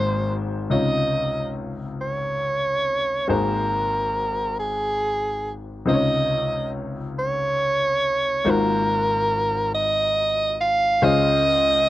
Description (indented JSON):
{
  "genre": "gospel",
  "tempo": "47 BPM (dotted quarters)",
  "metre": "6/8",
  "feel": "straight",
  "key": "Db major",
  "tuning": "A4 = 441 Hz",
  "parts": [
    { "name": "bright soprano saxophone", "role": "melody", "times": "0.0-11.9 s", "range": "Ab4 to F5", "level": "-21 LUFS", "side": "right 1 dB", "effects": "none" },
    { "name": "bright grand piano", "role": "accompaniment", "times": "0.0-11.9 s", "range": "Ab1 to F5", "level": "-25 LUFS", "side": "left 2 dB", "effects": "none" }
  ],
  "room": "little or no reverb",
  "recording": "dry, close 1970s-style studio recording",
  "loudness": "-20 LUFS",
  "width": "side -15 dB against mid",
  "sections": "0.7-11.0 A section",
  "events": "none",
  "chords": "0.0 Ab9; 0.7 Dbmaj9; 3.3 Ab9; 5.9 Dbmaj9; 8.4 Ab13; 11.0 Dbmaj7",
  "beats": "| 0.71 2.00 | 3.29 4.58 | 5.87 7.16 | 8.44 9.73 | 11.01"
}